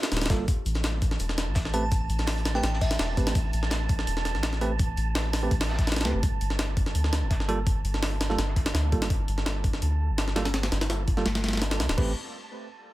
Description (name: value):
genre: drum and bass, jungle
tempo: 167 BPM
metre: 4/4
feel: straight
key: A phrygian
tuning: A4 = 441 Hz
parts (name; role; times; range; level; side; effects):
- warbly tape-like pad; sustained chords; 0.0-0.5 s; Bb3 to Bb4; -44 LUFS; left 1 dB; none
- crunchy breakbeat drum kit; drums; 0.0-11.9 s; hi-hat, shaker, snare drum; -41 LUFS; left 1 dB; none
- jungle sampler-style drum kit; drums; 0.0-12.1 s; crash cymbal, hi-hat, kick drum, snare drum; -27 LUFS; equal; none
- soft dub sub bass; bass; 0.1-12.1 s; D1 to D2; -28 LUFS; equal; none
- bell-like tine electric piano; stabs; 0.3-12.1 s; G3 to B4; -34 LUFS; right 3 dB; low-pass filter, dub echo
- wind-like tuned noise texture; texture; 1.0-12.0 s; A5; -38 LUFS; right 8 dB; built-in reverb
- glassy synth bell; melody; 1.7-3.1 s; E5 to A5; -34 LUFS; equal; chorus, dub echo
room: little or no reverb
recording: none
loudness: -24 LUFS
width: side -16 dB against mid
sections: 0.5-12.0 A section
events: filter sweep on sub bass 0.5-12.0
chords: 0.5 A7(no3); 6.2 Gsus2; 12.0 Am9